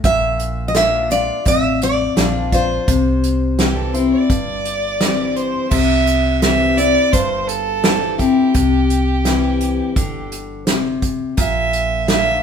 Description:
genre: honky-tonk and classic country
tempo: 85 BPM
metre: 4/4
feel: straight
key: C mixolydian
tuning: A4 = 440 Hz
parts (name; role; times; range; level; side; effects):
- picked steel-string acoustic guitar; accompaniment; 0.0-12.4 s; F2 to F4; -19 LUFS; left 5 dB; none
- hollow-body short-scale fingered electric bass; bass; 0.0-12.4 s; G1 to C2; -23 LUFS; right 1 dB; none
- unplugged drum kit; drums; 0.0-12.2 s; crash cymbal, hi-hat, kick drum, snare drum; -20 LUFS; right 1 dB; none
- picked steel-string acoustic guitar; melody; 0.1-4.6 s; C5 to E5; -18 LUFS; equal; none
- rich fiddle; second line; 3.6-12.4 s; G4 to E5; -19 LUFS; right 3 dB; none
room: moderate stone room reverb, RT60 1.0 s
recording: band playing live in one room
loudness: -14 LUFS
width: side -7 dB against mid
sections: 0.0-5.7 A section; 5.7-12.4 A section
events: fiddle solo 5.7-12.4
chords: 0.0 Bb; 2.9 C; 11.4 Bb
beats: | 0.04 0.75 1.46 2.17 | 2.88 3.59 4.29 5.00 | 5.71 6.42 7.13 7.84 | 8.54 9.25 9.96 10.67 | 11.38 12.09

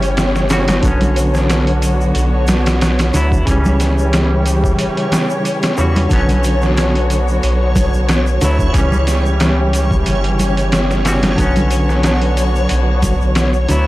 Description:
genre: trip hop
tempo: 91 BPM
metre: 4/4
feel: swing 54% on 16ths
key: B minor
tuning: A4 = 438 Hz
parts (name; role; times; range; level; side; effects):
- semi-hollow electric guitar; accompaniment; 0.0-13.9 s; C#3 to F#4; -19 LUFS; equal; harmonic tremolo, tape echo
- muted studio string section; sustained chords; 0.0-13.9 s; D3 to C#5; -21 LUFS; left 1 dB; vintage 12-bit sampler grit
- round analog bass; bass; 0.0-13.9 s; G1 to E2; -16 LUFS; equal; none
- trip hop sampler-style drum kit; drums; 0.0-13.9 s; hi-hat, kick drum, snare drum; -18 LUFS; equal; none
- tube shaker and congas; percussion; 0.0-13.8 s; none; -23 LUFS; equal; none
- backwards swelling texture; texture; 0.0-13.9 s; C#5; -27 LUFS; right 2 dB; built-in reverb
room: digital ambience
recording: dry, gritty hardware recording, transformer saturation, vinyl crackle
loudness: -12 LUFS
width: side -17 dB against mid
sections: 0.0-13.9 A section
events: none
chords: 0.0 C#dim; 0.8 Bmadd9; 3.5 C#dim; 6.1 Bmadd9; 8.7 C#dim; 11.4 Bmadd9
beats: 0.18 | 0.83 1.49 2.15 2.81 | 3.47 4.13 4.79 5.45 | 6.11 6.77 7.43 8.09 | 8.75 9.41 10.07 10.72 | 11.38 12.04 12.70 13.36

